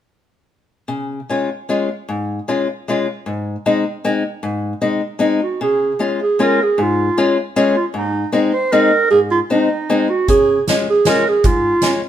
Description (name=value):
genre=alpine folk, alpine dance band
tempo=154 BPM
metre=3/4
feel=rubato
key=Db major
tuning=A4 = 436 Hz
part: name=fingerpicked acoustic archtop guitar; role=accompaniment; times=0.9-12.0 s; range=Ab2 to F4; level=-17 LUFS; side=left 3 dB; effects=none
part: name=growling clarinet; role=melody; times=5.4-12.0 s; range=Eb4 to C5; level=-15 LUFS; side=right 3 dB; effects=none
part: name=loose indie drum kit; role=drums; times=10.3-11.9 s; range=hi-hat, kick drum, snare drum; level=-18 LUFS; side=right 1 dB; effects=none
room=moderate stone room reverb, RT60 0.9 s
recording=band playing live in one room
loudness=-15 LUFS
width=side -10 dB against mid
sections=0.9-5.6 A section; 5.6-12.1 B section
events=none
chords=0.9 Db; 3.3 Ab; 5.6 Db; 8.0 Ab; 10.3 Db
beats=| 0.90 1.30 1.70 | 2.10 2.49 2.88 | 3.26 3.65 4.04 | 4.43 4.82 5.22 | 5.62 6.02 6.42 | 6.81 7.19 7.58 | 7.96 8.34 8.72 | 9.11 9.49 9.88 | 10.28 10.67 11.06 | 11.44 11.82